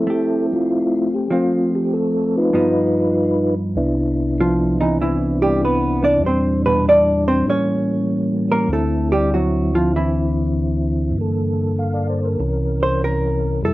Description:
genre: jazz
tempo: 97 BPM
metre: 4/4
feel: swing 68% on 8ths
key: C major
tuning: A4 = 441 Hz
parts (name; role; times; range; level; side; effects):
- percussive tonewheel organ; melody; 0.0-13.7 s; C2 to F5; -18 LUFS; equal; slow rotary speaker, chorus vibrato
- hollow-body jazz guitar; accompaniment; 0.0-13.7 s; G2 to D5; -20 LUFS; right 1 dB; none
room: moderate studio reverb, RT60 0.9 s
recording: worn, warbling old tape, cassette tape, warbly pitch drift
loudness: -16 LUFS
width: side -17 dB against mid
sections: 0.0-3.8 A section; 3.8-13.7 B section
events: hollow-body jazz guitar solo 3.8-13.7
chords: 0.0 Fmaj9; 1.3 F; 2.5 Gaug7; 3.8 Cmaj9; 6.2 Em7b5; 7.5 A7b9; 8.7 Dm9; 11.2 Gmadd9; 12.4 C7b9

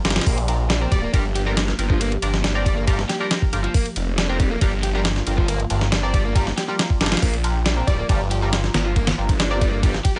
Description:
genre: breakbeat, breaks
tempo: 138 BPM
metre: 4/4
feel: straight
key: G minor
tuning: A4 = 438 Hz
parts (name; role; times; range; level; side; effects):
- warbly tape-like pad; sustained chords; 0.0-10.2 s; F3 to G4; -35 LUFS; equal; chorus, built-in reverb, sidechain pumping
- band-passed chord stab; stabs; 0.0-10.2 s; D4 to Bb4; -33 LUFS; equal; phaser, analog chorus, digital delay
- phased detuned saw bass; bass; 0.0-10.0 s; D1 to Bb1; -25 LUFS; equal; phaser
- dusty soul sampler-style drum kit; drums; 0.0-10.2 s; hi-hat, kick drum, ride cymbal, snare drum; -23 LUFS; equal; none
- overdriven electric guitar; riff; 0.2-10.2 s; F3 to G4; -31 LUFS; equal; vintage 12-bit sampler grit, digital delay
- glassy wavetable pluck; melody; 0.9-2.7, 6.0-9.7 s; D5; -33 LUFS; equal; chorus, small speaker sound, digital delay
room: little or no reverb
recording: nothing above 10.3 kHz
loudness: -21 LUFS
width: mono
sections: 0.0-10.2 A section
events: none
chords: 0.0 Gm7

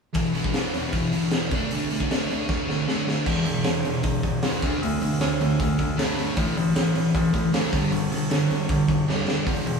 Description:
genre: punk rock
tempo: 155 BPM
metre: 4/4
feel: straight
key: E minor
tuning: A4 = 442 Hz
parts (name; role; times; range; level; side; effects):
- sludgy distorted guitar; riff; 0.1-9.8 s; E2 to D4; -24 LUFS; equal; overdrive
- raw garage drum kit; drums; 0.1-9.8 s; crash cymbal, hi-hat, kick drum, snare drum; -26 LUFS; equal; none
- bright concert grand piano; bass; 3.3-9.8 s; D#1 to G2; -28 LUFS; left 1 dB; none
room: moderate studio reverb, RT60 0.6 s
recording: band playing live in one room, studio reverb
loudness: -21 LUFS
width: side -5 dB against mid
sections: 0.2-3.3 A section; 3.3-9.8 B section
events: drum fill 2.5-3.3, 9.1-9.5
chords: 0.2 E5; 1.5 D5; 3.3 E5; 4.6 D5; 6.4 A5; 7.7 G5

